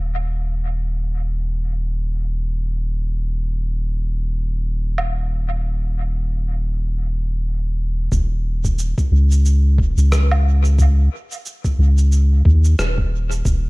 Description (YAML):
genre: ambient dub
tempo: 90 BPM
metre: 4/4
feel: swing 58% on 16ths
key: unclear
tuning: A4 = 440 Hz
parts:
  - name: soft dub sub bass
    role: bass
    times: 0.0-13.7 s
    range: Eb1 to Eb2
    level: -17 LUFS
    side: equal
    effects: none
  - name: electronic woodblock, shaker and rim click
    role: drums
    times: 5.0-13.6 s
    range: none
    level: -28 LUFS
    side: right 1 dB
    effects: dub echo
  - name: electronic kick drum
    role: drums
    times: 8.1-13.6 s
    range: none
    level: -19 LUFS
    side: equal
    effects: none
room: little or no reverb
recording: echo-heavy mix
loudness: -17 LUFS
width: side -25 dB against mid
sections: 0.0-8.1 A section; 8.1-13.7 B section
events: none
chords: none